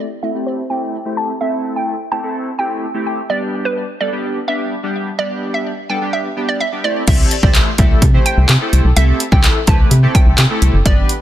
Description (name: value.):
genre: dance-pop.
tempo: 127 BPM.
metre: 4/4.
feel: straight.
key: unclear.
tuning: A4 = 439 Hz.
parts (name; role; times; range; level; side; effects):
chorused polysynth; accompaniment; 0.0-11.1 s; G3 to C5; -21 LUFS; equal; sidechain pumping, low-pass filter.
hollow square pluck; melody; 0.2-10.9 s; B4 to A5; -22 LUFS; right 2 dB; chorus, sidechain pumping, low-pass filter, ping-pong delay.
soft round pluck; melody; 0.5-3.0 s; C5 to A5; -27 LUFS; left 4 dB; chorus, low-pass filter, ping-pong delay.
organ-like FM bass; bass; 7.1-11.0 s; F#1 to C3; -13 LUFS; equal; sidechain pumping.
punchy analog drum machine; drums; 7.1-11.2 s; crash cymbal, handclaps, hi-hat, kick drum; -12 LUFS; equal; overdrive.
room: light reverb.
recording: dense, heavily limited modern master.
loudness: -13 LUFS.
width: side -12 dB against mid.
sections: 0.0-7.1 A section; 7.1-11.2 B section.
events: filter sweep 0.0-7.1; drop 7.1-11.2.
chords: 0.0 C6; 3.3 G; 6.8 C6.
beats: 0.46 0.93 | 1.41 1.88 2.35 2.82 | 3.30 3.77 4.24 4.71 | 5.19 5.66 6.13 6.60 | 7.08 7.55 8.02 8.49 | 8.97 9.44 9.91 10.38 | 10.86.